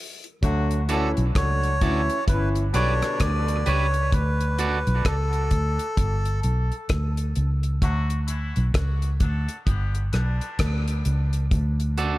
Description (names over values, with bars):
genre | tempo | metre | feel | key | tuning
dub reggae | 65 BPM | 4/4 | swing 60% on 16ths | D major | A4 = 441 Hz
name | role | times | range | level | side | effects
damped 70s drum kit | drums | 0.2-12.2 s | hi-hat, kick drum, rim click | -26 LUFS | equal | none
dark horn section | second line | 0.4-11.0 s | B2 to A4 | -31 LUFS | left 2 dB | high-pass filter, dub echo
vintage muted fingered electric bass | bass | 0.4-12.2 s | G1 to D2 | -23 LUFS | equal | none
melodica | melody | 0.9-6.4 s | A4 to D5 | -28 LUFS | equal | dub echo
electric guitar at the edge of break-up | accompaniment | 0.9-4.8, 12.0-12.2 s | F#4 to D5 | -31 LUFS | right 5 dB | high-pass filter, dub echo
room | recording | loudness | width
small room ambience | none | -21 LUFS | side -17 dB against mid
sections
0.4-12.2 A section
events
break 0.0-0.4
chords
0.4 D; 2.3 G; 4.1 D5; 6.0 G; 7.8 D; 9.7 G; 11.5 D